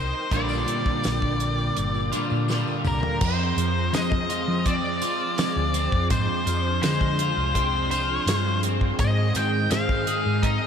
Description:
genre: psychedelic rock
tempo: 83 BPM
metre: 4/4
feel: straight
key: unclear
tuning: A4 = 440 Hz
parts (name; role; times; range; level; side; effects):
- octave-fuzz lead guitar; melody; 0.0-10.7 s; Bb4 to G5; -27 LUFS; left 2 dB; distortion, analog delay
- string machine, violas; sustained chords; 0.0-10.7 s; Eb3 to G5; -32 LUFS; right 2 dB; ensemble chorus
- hollow-body short-scale fingered electric bass; bass; 0.0-10.6 s; G1 to F3; -26 LUFS; equal; none
- electric guitar at the edge of break-up; riff; 0.3-10.7 s; F2 to Ab4; -27 LUFS; equal; flanger, double-tracked left and right
- damped 70s drum kit; drums; 0.3-10.6 s; crash cymbal, hi-hat, kick drum, snare drum, toms; -28 LUFS; equal; none
- tambourine; percussion; 0.3-10.5 s; none; -44 LUFS; left 11 dB; none
room: moderate huge ambient reverb, RT60 4.8 s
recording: dreamy mix soaked in reverb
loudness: -21 LUFS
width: side -7 dB against mid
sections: 0.0-3.2 A section; 3.2-10.7 B section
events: drum fill 2.5-3.2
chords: 0.3 Bb6; 3.2 Fm; 9.0 Ab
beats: | 0.31 1.04 1.76 2.49 | 3.21 3.94 4.66 5.38 | 6.11 6.83 7.55 8.27 | 8.99 9.71 10.43

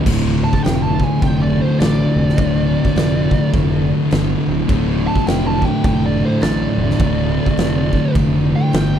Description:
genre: stoner and doom metal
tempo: 104 BPM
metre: 4/4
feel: swing 61% on 8ths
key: D minor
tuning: A4 = 440 Hz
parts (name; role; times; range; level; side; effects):
- string machine, violins; sustained chords; 0.0-9.0 s; D3 to A3; -30 LUFS; equal; none
- thick fuzz guitar; riff; 0.0-9.0 s; D2 to D3; -19 LUFS; left 7 dB; distortion
- thick fuzz guitar; riff; 0.0-9.0 s; D2 to D3; -20 LUFS; right 8 dB; distortion
- fuzz fingered electric bass; bass; 0.1-9.0 s; D1 to A1; -22 LUFS; equal; overdrive, tube saturation
- oversized low-tuned drum kit; drums; 0.1-8.9 s; crash cymbal, kick drum, snare drum; -20 LUFS; right 1 dB; none
- fuzz lead guitar; melody; 0.4-9.0 s; C5 to A5; -25 LUFS; right 3 dB; wah, distortion, tape echo
room: little or no reverb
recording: none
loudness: -14 LUFS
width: side -9 dB against mid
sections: 0.1-9.0 A section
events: lead electric guitar solo 0.1-9.0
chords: 0.1 Dm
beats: | 0.06 0.64 1.22 1.80 | 2.38 2.96 3.54 4.11 | 4.69 5.27 5.84 6.42 | 7.00 7.58 8.15 8.73

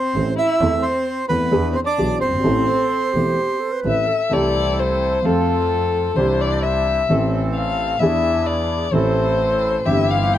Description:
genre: tango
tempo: 130 BPM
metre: 4/4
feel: rubato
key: A minor, C major from 4.3 s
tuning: A4 = 440 Hz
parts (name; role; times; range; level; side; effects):
- bandoneon; melody; 0.0-3.8 s; B4 to E5; -20 LUFS; right 4 dB; none
- dark violin; second line; 0.0-10.4 s; B3 to G5; -21 LUFS; left 4 dB; none
- dark grand piano; accompaniment; 0.1-10.4 s; E1 to A4; -21 LUFS; equal; none
- clear double bass; bass; 0.1-10.4 s; E1 to F2; -25 LUFS; right 1 dB; none
- hollow concert flute; second line; 2.7-4.3 s; G4 to B4; -26 LUFS; right 4 dB; none
- bandoneon; stabs; 4.3-10.4 s; E3 to C5; -27 LUFS; right 3 dB; none
room: light reverb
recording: none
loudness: -16 LUFS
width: side -11 dB against mid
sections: 0.0-4.3 A section; 4.3-10.4 B section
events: violin solo 4.3-10.4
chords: 0.0 Am; 1.5 E7; 2.4 Am; 4.3 C6; 5.2 F; 6.2 Cadd9; 7.1 Am; 8.0 E7; 8.9 Am; 9.8 C/G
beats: 0.14 | 0.60 1.06 1.52 1.98 | 2.44 2.91 3.37 3.84 | 4.31 4.78 5.24 5.70 | 6.16 6.62 7.08 7.54 | 8.00 8.46 8.92 9.38 | 9.85 10.31

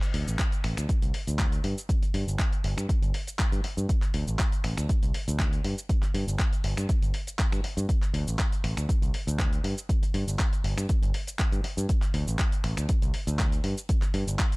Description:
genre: filtered disco house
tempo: 120 BPM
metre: 4/4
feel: swing 53% on 16ths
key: unclear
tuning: A4 = 439 Hz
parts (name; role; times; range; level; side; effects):
- dusty soul sampler-style drum kit; drums; 0.0-14.6 s; finger snaps, handclaps, hi-hat, shaker; -35 LUFS; left 1 dB; sidechain pumping on hats, sidechain pumping on cymbals, sidechain pumping on perc
- growling fingered electric bass; bass; 0.1-14.4 s; G1 to G2; -29 LUFS; equal; overdrive, sidechain pumping, low-pass filter
- electronic kick drum; drums; 0.4-14.5 s; none; -26 LUFS; equal; none
room: digital ambience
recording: dark, warm production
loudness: -25 LUFS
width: side -26 dB against mid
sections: 0.0-14.6 A section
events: filter sweep on fingered electric bass 0.0-14.6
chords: none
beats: 0.39 0.89 1.39 | 1.89 2.39 2.89 3.39 | 3.89 4.39 4.89 5.39 | 5.89 6.39 6.89 7.39 | 7.89 8.39 8.89 9.39 | 9.89 10.39 10.89 11.39 | 11.89 12.39 12.89 13.39 | 13.89 14.39

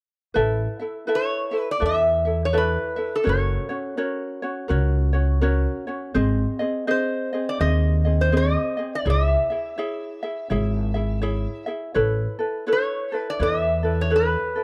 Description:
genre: Hawaiian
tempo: 83 BPM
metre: 4/4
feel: swing 62% on 8ths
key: A major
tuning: A4 = 439 Hz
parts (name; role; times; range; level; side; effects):
- ukulele; accompaniment; 0.3-14.6 s; B#3 to E5; -28 LUFS; equal; none
- upright bass; bass; 0.4-14.3 s; F#1 to E2; -24 LUFS; equal; none
- metal-body resonator slide guitar; melody; 1.2-14.6 s; A4 to E5; -26 LUFS; equal; none
room: small room ambience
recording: dry, close 1970s-style studio recording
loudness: -23 LUFS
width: mono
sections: 0.4-14.6 A section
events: none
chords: 0.4 Asus2; 3.3 F#; 6.2 G#; 9.1 C#m; 12.0 Aadd9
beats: | 0.36 1.08 1.81 2.54 | 3.26 3.98 4.71 5.43 | 6.16 6.88 7.61 8.33 | 9.06 9.78 10.51 11.23 | 11.96 12.68 13.41 14.13

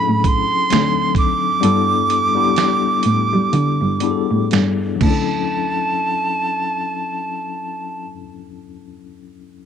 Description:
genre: R&B, neo-soul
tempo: 58-67 BPM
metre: 4/4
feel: swing 58% on 16ths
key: D major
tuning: A4 = 436 Hz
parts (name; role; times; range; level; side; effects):
- breathy bright jazz flute; melody; 0.0-8.1 s; A5 to D6; -19 LUFS; right 4 dB; slapback echo
- tine electric piano; accompaniment; 0.0-9.7 s; F#3 to A4; -22 LUFS; left 12 dB; fast tremolo
- dark cello; bass; 0.1-8.1 s; D2 to G3; -20 LUFS; right 1 dB; none
- dusty soul sampler-style drum kit; drums; 0.2-5.3 s; crash cymbal, finger snaps, hi-hat, kick drum, snare drum; -21 LUFS; right 3 dB; none
room: light reverb, small room reverb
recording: 1960s-style stereo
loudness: -15 LUFS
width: side -8 dB against mid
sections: 0.0-5.5 A section; 5.5-9.7 B section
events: slowing down 0.0-5.5; kick muted 1.6-5.5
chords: 0.0 Dmaj9; 0.7 D7b9; 1.6 G69; 5.0 Dmaj9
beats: 0.69 | 1.61 2.55 3.51 4.50 | 5.52 6.56 7.60 8.63

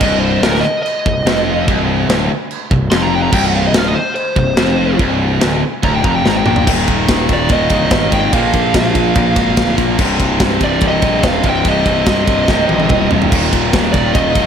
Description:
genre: heavy metal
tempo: 144 BPM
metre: 4/4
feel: straight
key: C minor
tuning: A4 = 440 Hz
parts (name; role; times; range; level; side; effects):
- high-gain lead guitar; melody; 0.0-14.5 s; Bb4 to C6; -18 LUFS; right 1 dB; distortion, slapback echo, ping-pong delay
- distorted electric guitar; riff; 0.0-14.5 s; C2 to Bb3; -18 LUFS; left 9 dB; overdrive, slapback echo
- scooped high-gain guitar; riff; 0.0-14.5 s; C2 to Bb3; -19 LUFS; right 9 dB; distortion, slapback echo
- fuzz picked electric bass; bass; 0.0-14.5 s; C1 to Bb1; -19 LUFS; equal; overdrive
- tight metal drum kit; drums; 0.0-14.4 s; china cymbal, crash cymbal, kick drum, ride cymbal, snare drum, splash cymbal, toms; -17 LUFS; equal; none
room: moderate scoring stage reverb, RT60 1.9 s, small room ambience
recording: big arena sound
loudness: -11 LUFS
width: side -8 dB against mid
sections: 0.0-6.7 A section; 6.7-14.5 B section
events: lead electric guitar solo 0.0-6.7; drum fill 6.2-6.7, 12.5-13.3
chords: 0.0 Cm; 6.7 Eb5; 8.3 Bb5; 10.0 Cm; 13.3 Eb5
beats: | 0.01 0.43 0.85 1.26 | 1.68 2.09 2.51 2.92 | 3.34 3.75 4.17 4.59 | 5.00 5.42 5.83 6.25 | 6.67 7.08 7.50 7.91 | 8.33 8.74 9.16 9.58 | 9.99 10.41 10.82 11.24 | 11.65 12.07 12.48 12.90 | 13.31 13.73 14.14

